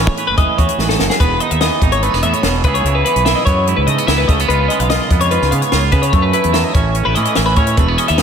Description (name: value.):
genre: math rock and midwest emo.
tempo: 146 BPM.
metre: 4/4.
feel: straight.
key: unclear.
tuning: A4 = 440 Hz.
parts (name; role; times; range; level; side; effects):
twangy electric guitar; accompaniment; 0.0-8.2 s; E2 to B4; -19 LUFS; right 10 dB; none.
twelve-string electric guitar; arpeggios; 0.0-8.2 s; G#4 to E#5; -17 LUFS; left 4 dB; analog chorus.
fuzz fingered electric bass; bass; 0.0-8.2 s; E1 to C#3; -18 LUFS; equal; overdrive.
compact cocktail drum kit; drums; 0.2-8.2 s; hi-hat, kick drum, snare drum; -17 LUFS; equal; none.
room: moderate lush hall reverb, RT60 1.9 s, studio reverb.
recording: big arena sound.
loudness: -12 LUFS.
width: side -7 dB against mid.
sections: 0.0-1.2 A section; 1.2-8.2 B section.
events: drum fill 0.8-1.2.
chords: 0.0 A69; 1.2 Emaj7; 2.6 C#m7; 4.3 C#7; 6.1 F#m7; 6.8 A.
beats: 0.38 0.79 | 1.20 1.61 2.02 2.44 | 2.85 3.26 3.67 4.08 | 4.49 4.91 5.32 5.73 | 6.14 6.55 6.96 7.37 | 7.78 8.19.